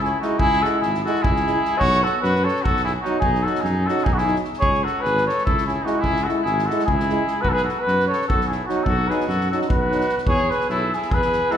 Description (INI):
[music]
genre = balkan folk, Balkan brass band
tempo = 298 BPM (eighths)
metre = 7/8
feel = straight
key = B mixolydian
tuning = A4 = 440 Hz
[part]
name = cornet with cup mute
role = melody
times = 0.0-11.6 s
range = F#4 to D#5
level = -21 LUFS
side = left 1 dB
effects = none
[part]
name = clear trumpet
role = second line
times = 0.0-11.6 s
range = D#4 to B4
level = -27 LUFS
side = left 1 dB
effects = none
[part]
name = mellow tuba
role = bass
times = 0.0-11.4 s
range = G#1 to F#2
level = -26 LUFS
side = right 1 dB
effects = none
[part]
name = soft-mallet drum kit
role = percussion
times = 0.0-11.5 s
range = kick drum, snare drum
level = -26 LUFS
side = equal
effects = none
[part]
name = clear euphonium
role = accompaniment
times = 0.2-11.6 s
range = D#4 to E4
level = -28 LUFS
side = left 4 dB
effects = none
[part]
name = clear trombone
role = accompaniment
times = 0.2-11.6 s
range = F#3 to G#3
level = -30 LUFS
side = right 8 dB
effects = none
[sound]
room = wet recital hall reverb, RT60 1.8 s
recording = recorded in a church or concert hall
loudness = -18 LUFS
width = side -9 dB against mid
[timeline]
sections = 0.0-10.3 A section; 10.3-11.6 B section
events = none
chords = 0.0 C#m; 1.8 B; 4.6 C#m; 7.4 B; 10.3 E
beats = 0.19 | 0.39 0.59 0.80 1.00 1.20 1.40 1.60 | 1.80 2.00 2.21 2.41 2.61 2.81 3.01 | 3.21 3.42 3.62 3.82 4.02 4.22 4.42 | 4.62 4.83 5.03 5.23 5.43 5.63 5.83 | 6.03 6.24 6.44 6.64 6.84 7.04 7.24 | 7.44 7.64 7.85 8.05 8.25 8.45 8.65 | 8.85 9.05 9.26 9.46 9.66 9.86 10.06 | 10.27 10.47 10.67 10.87 11.07 11.28 11.48